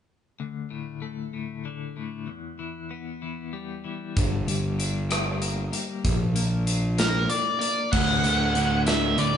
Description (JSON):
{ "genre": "quiet-loud alternative rock", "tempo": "64 BPM (dotted quarters)", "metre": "6/8", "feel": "straight", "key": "unclear", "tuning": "A4 = 437 Hz", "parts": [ { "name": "twelve-string electric guitar", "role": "arpeggios", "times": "0.4-9.4 s", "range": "D2 to F4", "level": "-33 LUFS", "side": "left 6 dB", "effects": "tremolo" }, { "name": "fuzz picked electric bass", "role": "bass", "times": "4.2-9.4 s", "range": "G1 to D2", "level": "-26 LUFS", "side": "equal", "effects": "overdrive" }, { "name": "big rock drum kit", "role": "drums", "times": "4.2-9.3 s", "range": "crash cymbal, hi-hat, kick drum, rim click, snare drum", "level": "-27 LUFS", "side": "equal", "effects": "none" }, { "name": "smooth overdriven lead guitar", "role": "melody", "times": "7.0-9.4 s", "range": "Bb4 to F#5", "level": "-25 LUFS", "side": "equal", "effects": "none" }, { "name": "crunchy overdriven guitar", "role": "riff", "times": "7.9-9.4 s", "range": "D2 to D3", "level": "-26 LUFS", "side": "right 2 dB", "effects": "spring reverb" } ], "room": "light reverb", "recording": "band playing live in one room, nothing above 10.3 kHz", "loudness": "-23 LUFS", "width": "side -8 dB against mid", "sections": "0.4-7.9 A section; 7.9-9.4 B section", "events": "none", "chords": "0.4 D5; 2.3 Em; 4.2 Gm; 6.0 Bb; 7.9 D" }